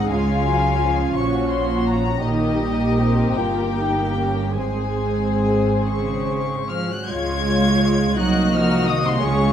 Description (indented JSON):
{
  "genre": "classical, slow romantic movement for string orchestra",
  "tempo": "44-58 BPM (dotted quarters)",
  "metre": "6/8",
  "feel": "rubato",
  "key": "Db major",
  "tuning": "A4 = 440 Hz",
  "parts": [
    { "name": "warm symphonic violin section", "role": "melody", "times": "0.0-9.5 s", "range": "Eb5 to Ab6", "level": "-26 LUFS", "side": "left 6 dB", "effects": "none" },
    { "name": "dark studio violin section", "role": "second line", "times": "0.0-9.5 s", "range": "F4 to F5", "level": "-25 LUFS", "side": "left 2 dB", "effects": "none" },
    { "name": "dark symphonic viola section", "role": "accompaniment", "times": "0.0-9.5 s", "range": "Eb3 to F4", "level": "-23 LUFS", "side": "equal", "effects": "none" },
    { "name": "dark symphonic double bass section", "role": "bass", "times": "0.0-9.5 s", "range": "G1 to Db2", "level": "-25 LUFS", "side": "right 2 dB", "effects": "none" },
    { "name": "warm symphonic cello section", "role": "bass", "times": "0.0-9.5 s", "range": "G2 to Ab3", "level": "-24 LUFS", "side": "right 2 dB", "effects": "none" }
  ],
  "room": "moderate scoring stage reverb, RT60 1.9 s",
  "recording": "dark, warm production",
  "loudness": "-18 LUFS",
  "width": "side -9 dB against mid",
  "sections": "0.0-7.1 A section; 7.1-9.5 B section",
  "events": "none",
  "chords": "0.1 Db; 1.2 Gb/Bb; 2.2 Eb7/Bb; 4.6 Ab; 7.1 Db; 8.2 Ebm69/C",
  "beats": "| 0.10 1.16 | 2.23 3.37 | 4.58 5.89 | 7.09 8.19 | 9.23"
}